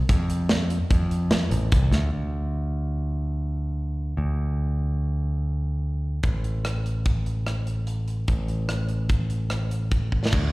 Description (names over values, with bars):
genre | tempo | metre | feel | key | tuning
progressive instrumental, band music in an uneven meter | 146 BPM | 5/4 | straight | unclear | A4 = 437 Hz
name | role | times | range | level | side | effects
modern bright picked electric bass | bass | 0.0-10.5 s | A1 to F2 | -24 LUFS | equal | none
tight metal drum kit | drums | 0.1-2.0, 6.2-10.4 s | crash cymbal, hi-hat, kick drum, rim click, snare drum | -24 LUFS | equal | none
room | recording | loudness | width
little or no reverb | live gig heard through the venue's PA, recital hall reverb | -23 LUFS | side -21 dB against mid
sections
0.0-2.1 A section; 2.1-10.3 B section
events
drum fill 10.1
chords
none